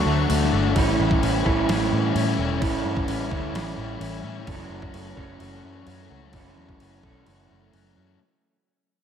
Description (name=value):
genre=rock, shoegaze and dream pop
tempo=129 BPM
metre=4/4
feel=straight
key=unclear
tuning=A4 = 440 Hz
part: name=soft additive organ-like pad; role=sustained chords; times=0.0-0.7 s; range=D5 to C#6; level=-36 LUFS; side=left 2 dB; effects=none
part: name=direct-recorded clean electric guitar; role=arpeggios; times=0.0-8.2 s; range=E3 to C#4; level=-34 LUFS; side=left 5 dB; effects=analog chorus, diffuse ambient delay
part: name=crunchy overdriven guitar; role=riff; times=0.0-8.2 s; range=A2 to F#4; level=-28 LUFS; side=left 9 dB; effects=wide subtle chorus
part: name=electric guitar through a small old amp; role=riff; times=0.0-8.2 s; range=F#2 to A4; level=-27 LUFS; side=right 8 dB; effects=reverse reverb
part: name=vintage muted fingered electric bass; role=bass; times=0.0-8.2 s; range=E1 to A2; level=-27 LUFS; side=equal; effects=none
part: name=detuned 8-bit digital drum machine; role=drums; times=0.3-7.8 s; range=crash cymbal, kick drum, snare drum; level=-29 LUFS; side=equal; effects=none
room=moderate plate reverb, RT60 2.0 s, digital ambience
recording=dreamy mix soaked in reverb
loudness=-20 LUFS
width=side -8 dB against mid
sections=0.0-8.2 A section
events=fade-out 0.0-8.2; break 7.7-8.2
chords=0.0 Dmaj7; 0.8 A7; 4.5 F#m7